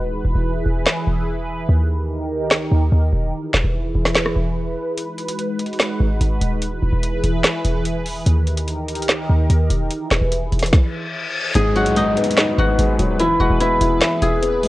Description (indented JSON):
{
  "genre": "hip hop, trap",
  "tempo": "146 BPM",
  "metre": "4/4",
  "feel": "half-time",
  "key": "G# minor",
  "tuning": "A4 = 442 Hz",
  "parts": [
    { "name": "guzheng", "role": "melody", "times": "0.0-1.3, 11.6-14.7 s", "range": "B3 to G#5", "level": "-20 LUFS", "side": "equal", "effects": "low-pass filter" },
    { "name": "sweeping resonant pad", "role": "sustained chords", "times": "0.0-14.7 s", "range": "D#3 to B4", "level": "-25 LUFS", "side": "right 1 dB", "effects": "chorus, phaser" },
    { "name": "short 808-style bass", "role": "bass", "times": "0.0-14.7 s", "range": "D#1 to D#2", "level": "-19 LUFS", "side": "equal", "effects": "none" },
    { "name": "trap drum kit", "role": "drums", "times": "0.9-14.7 s", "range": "handclaps, hi-hat, kick drum, rim click, snare drum", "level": "-19 LUFS", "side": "equal", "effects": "vintage 12-bit sampler grit" },
    { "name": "reverse cymbal and downlifter", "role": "sound effects", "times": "10.9-14.7 s", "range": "none", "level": "-28 LUFS", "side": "left 1 dB", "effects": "none" },
    { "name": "felt-muted upright piano", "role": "accompaniment", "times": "11.6-14.7 s", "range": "G#2 to E5", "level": "-19 LUFS", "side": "left 2 dB", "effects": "low-pass filter" }
  ],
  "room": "digital ambience",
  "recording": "worn, warbling old tape, cassette tape, warbly pitch drift",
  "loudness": "-16 LUFS",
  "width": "side -17 dB against mid",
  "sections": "0.0-11.6 A section; 11.6-14.7 B section",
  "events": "break 0.0-5.0, 5.0-5.8; reverse cymbal 10.9-11.6",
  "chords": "0.0 E; 1.7 D#; 3.3 E; 5.0 G#m7; 6.6 E; 8.3 D#; 9.9 E; 11.6 G#m7; 13.2 E"
}